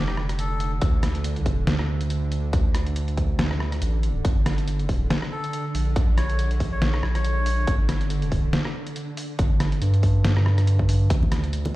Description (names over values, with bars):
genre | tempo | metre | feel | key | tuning
deep dubstep | 140 BPM | 4/4 | swing 56% on 16ths, half-time | unclear | A4 = 439 Hz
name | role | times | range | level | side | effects
melodica | melody | 0.0-0.7, 5.3-7.7 s | G4 to C#5 | -32 LUFS | left 1 dB | dub echo
bowed-like drone | sustained chords | 0.1-11.8 s | D3 | -32 LUFS | right 2 dB | built-in reverb
saturated sub bass | bass | 0.0-11.8 s | F1 to G2 | -23 LUFS | equal | none
trip hop sampler-style drum kit | drums | 0.1-11.7 s | hi-hat, rim click, snare drum | -28 LUFS | equal | none
electronic kick drum | drums | 0.8-11.2 s | none | -24 LUFS | equal | overdrive
congas | percussion | 11.2-11.7 s | none | -29 LUFS | right 1 dB | dub echo
room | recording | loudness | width
light reverb | played on a big sound system in a bare room, large studio reverb | -20 LUFS | side -17 dB against mid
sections
0.0-11.8 A section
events
none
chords
0.0 Dm; 4.2 Gm; 11.1 N.C.